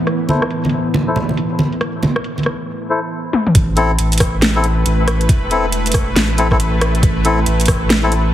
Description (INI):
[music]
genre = deep dubstep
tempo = 138 BPM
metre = 4/4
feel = swing 62% on 16ths, half-time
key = A minor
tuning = A4 = 440 Hz
[part]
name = bowed-like drone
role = sustained chords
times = 0.0-8.3 s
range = A2 to B4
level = -22 LUFS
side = right 1 dB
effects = built-in reverb
[part]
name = dubstep drum kit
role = drums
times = 0.1-8.2 s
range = hi-hat, rim click, snare drum, toms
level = -18 LUFS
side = equal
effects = low-pass filter on hats, studio reverb, low-pass filter on snare, low-pass filter on toms
[part]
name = melodica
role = stabs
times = 0.3-8.1 s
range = C4 to C5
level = -20 LUFS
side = left 3 dB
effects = low-pass filter, dub echo
[part]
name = congas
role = percussion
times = 0.3-2.4 s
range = none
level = -19 LUFS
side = right 1 dB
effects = none
[part]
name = saturated sub bass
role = bass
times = 3.5-8.3 s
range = E1 to A1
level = -17 LUFS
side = equal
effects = none
[part]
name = electronic kick drum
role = drums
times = 3.5-7.8 s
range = none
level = -15 LUFS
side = equal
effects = studio reverb
[sound]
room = light reverb, digital ambience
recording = heavily compressed radio sound, multiband compression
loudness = -13 LUFS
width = side -12 dB against mid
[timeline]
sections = 0.0-3.6 A section; 3.6-8.3 B section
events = filter sweep on synth drone 0.0-3.6; drum fill 3.3; drop 3.6-8.3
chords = 0.0 A5; 3.6 Am